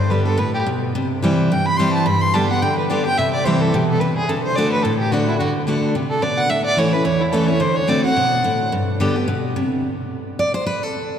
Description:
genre	bluegrass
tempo	216 BPM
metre	4/4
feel	swing 56% on 8ths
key	G major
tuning	A4 = 440 Hz
part	warm fiddle	melody	0.0-8.7 s	E4 to C6	-21 LUFS	right 1 dB	none
part	picked steel-string acoustic guitar	accompaniment	0.0-11.2 s	E2 to D5	-18 LUFS	equal	none
room	wet cathedral reverb, RT60 5.2 s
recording	recorded in a church or concert hall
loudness	-16 LUFS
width	side -8 dB against mid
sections	1.0-9.8 A section; 9.8-11.2 B section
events	steel-string acoustic guitar solo 9.8-11.2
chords	0.0 G; 1.0 C; 2.1 G; 3.2 C; 4.3 D; 6.5 A; 7.6 D7; 8.7 G; 9.8 N.C.

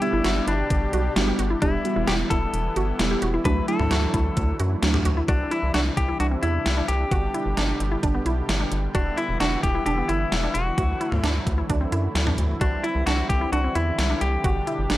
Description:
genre	synth-pop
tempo	131 BPM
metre	4/4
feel	straight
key	unclear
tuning	A4 = 444 Hz
part	direct-recorded clean electric guitar	melody	0.0-15.0 s	D4 to B4	-28 LUFS	left 3 dB	none
part	muted felt-like synth keys	accompaniment	0.0-5.1 s	F#3 to G4	-27 LUFS	right 2 dB	chorus
part	brassy analog pad	sustained chords	0.0-15.0 s	B2 to G4	-31 LUFS	right 1 dB	chorus
part	gated 80s digital drum machine	drums	0.0-15.0 s	hi-hat, kick drum, snare drum, toms	-26 LUFS	equal	gated reverb, gated reverb snare, overdrive
part	resonant blip pluck	arpeggios	0.1-15.0 s	B3 to G4	-29 LUFS	right 2 dB	chorus, tape echo
part	rubbery square bass	bass	0.1-15.0 s	E1 to F#2	-25 LUFS	equal	none
room	digital ambience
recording	dry, gritty hardware recording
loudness	-21 LUFS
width	side -15 dB against mid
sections	0.0-5.3 A section; 5.3-15.0 B section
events	none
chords	0.0 G; 1.6 Em7; 3.5 Dadd9; 5.3 Cadd9; 7.1 G; 8.9 Em7; 10.8 Dadd9; 12.6 Cadd9; 14.4 G

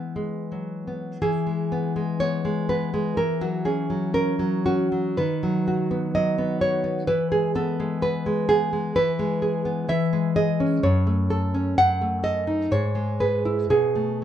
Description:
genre	romantic piece for solo classical guitar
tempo	56-65 BPM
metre	2/4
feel	rubato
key	E major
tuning	A4 = 441 Hz
part	nylon-string guitar	solo	0.0-14.2 s	F#2 to F#5	-21 LUFS	equal	none
room	moderate large studio reverb, RT60 0.8 s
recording	band playing live in one room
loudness	-21 LUFS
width	side -10 dB against mid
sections	0.0-1.2 A section; 1.2-14.2 A section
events	none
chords	0.0 E; 3.2 F#5/E; 5.2 B/D#; 7.1 E; 9.9 C#m/E; 10.8 F#m; 11.8 D#dim/F#; 12.7 E/G#; 13.7 B7(no3)

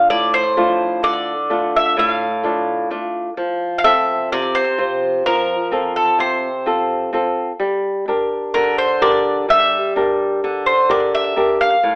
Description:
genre	greek folk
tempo	128 BPM (eighths)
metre	9/8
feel	straight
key	unclear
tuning	A4 = 440 Hz
part	Greek bouzouki	melody	0.0-12.0 s	A4 to F5	-16 LUFS	equal	slapback echo, plate reverb
part	flamenco guitar	accompaniment	0.0-12.0 s	A2 to C5	-18 LUFS	equal	plate reverb
room	wet studio reverb, RT60 0.6 s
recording	rough home demo mix, telephone sound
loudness	-15 LUFS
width	side -26 dB against mid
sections	0.0-12.0 A section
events	none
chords	0.0 Dm; 3.4 F; 7.6 Gm

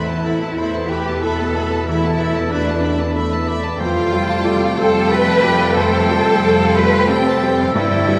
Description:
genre	cinematic, emotional film score for orchestra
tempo	92 BPM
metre	3/4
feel	rubato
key	unclear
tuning	A4 = 440 Hz
part	warm symphonic violin section	melody	0.0-8.2 s	G5 to B5	-30 LUFS	equal	none
part	clear oboe	second line	0.0-8.2 s	A4 to E5	-28 LUFS	equal	none
part	mellow clarinet	second line	0.0-8.2 s	C4 to B4	-28 LUFS	equal	none
part	mellow hollow silver concert flute	second line	0.0-8.2 s	C5 to B5	-29 LUFS	equal	none
part	warm symphonic violin section	second line	0.0-8.2 s	B4 to A5	-30 LUFS	equal	none
part	felt-muted upright piano	accompaniment	0.0-8.2 s	E2 to B4	-26 LUFS	equal	none
part	warm symphonic viola section	accompaniment	0.0-8.2 s	G3 to B3	-29 LUFS	equal	none
part	dark French horn section	sustained chords	0.0-8.2 s	B2 to D5	-29 LUFS	equal	none
part	concert harp	arpeggios	0.0-8.2 s	E2 to A5	-28 LUFS	equal	none
part	warm symphonic cello section	bass	0.0-8.2 s	C4 to B4	-22 LUFS	equal	none
part	warm symphonic double bass section	bass	0.0-8.2 s	E2 to G2	-26 LUFS	equal	none
room	wet church reverb, RT60 3.6 s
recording	none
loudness	-17 LUFS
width	mono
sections	0.0-8.2 A section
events	none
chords	0.0 Esus4; 3.8 Fadd9

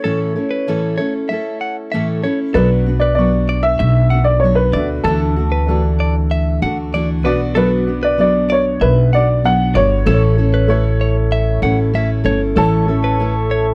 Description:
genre	acoustic pop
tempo	96 BPM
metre	4/4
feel	straight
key	unclear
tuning	A4 = 440 Hz
part	warm upright piano	melody	0.0-13.7 s	A4 to F#5	-21 LUFS	equal	none
part	fingerpicked steel-string acoustic guitar	accompaniment	0.0-13.7 s	A2 to A4	-22 LUFS	equal	none
part	direct-recorded clean electric guitar	arpeggios	0.0-13.7 s	A4 to F#5	-25 LUFS	equal	none
part	dark upright piano	accompaniment	2.5-13.7 s	A3 to C#6	-28 LUFS	equal	none
part	upright bass	bass	2.5-13.7 s	G1 to D2	-19 LUFS	equal	none
part	glass harmonica	sustained chords	12.6-13.7 s	A4 to C#6	-29 LUFS	equal	none
room	light reverb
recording	dry, close 1970s-style studio recording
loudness	-16 LUFS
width	mono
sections	0.0-2.6 A section; 2.6-12.6 B section; 12.6-13.7 C section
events	none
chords	0.0 A; 2.6 Bm; 4.7 Dadd9; 7.3 Bm; 10.1 A

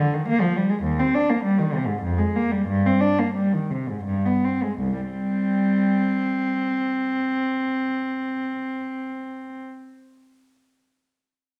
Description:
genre	classical, baroque-style suite movement for unaccompanied cello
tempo	77-105 BPM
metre	3/4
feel	rubato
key	C minor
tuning	A4 = 440 Hz
part	dark cello	solo	0.0-9.6 s	C2 to D4	-23 LUFS	equal	none
room	wet recital hall reverb, RT60 1.4 s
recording	none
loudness	-23 LUFS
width	mono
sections	0.0-4.8 A section; 4.8-9.4 B section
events	slowing down 0.0-4.8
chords	0.0 Fm; 0.8 Cm/Eb; 2.0 Fmadd9; 2.7 Cm/G; 4.1 G; 4.8 C5

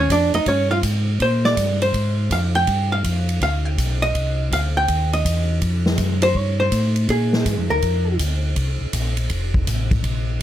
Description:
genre	soul jazz organ trio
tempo	163 BPM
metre	4/4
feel	swing 66% on 8ths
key	Bb mixolydian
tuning	A4 = 440 Hz
part	archtop guitar, miked and amplified	accompaniment	0.0-8.2 s	Db4 to G5	-21 LUFS	right 1 dB	none
part	mellow tonewheel organ	bass	0.0-10.4 s	F1 to Bb2	-20 LUFS	equal	slow rotary speaker
part	swinging big-band drum kit	drums	0.1-10.1 s	hi-hat, kick drum, ride cymbal, snare drum	-25 LUFS	equal	none
room	little or no reverb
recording	close, detailed microphones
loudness	-18 LUFS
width	side -12 dB against mid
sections	0.0-10.0 A section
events	hollow-body jazz guitar solo 0.0-10.0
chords	0.0 Eb9; 1.2 Bb9; 2.7 G7; 4.1 Cm; 5.6 Fadd9; 7.1 Bb7; 8.6 Bbsus2; 9.3 F

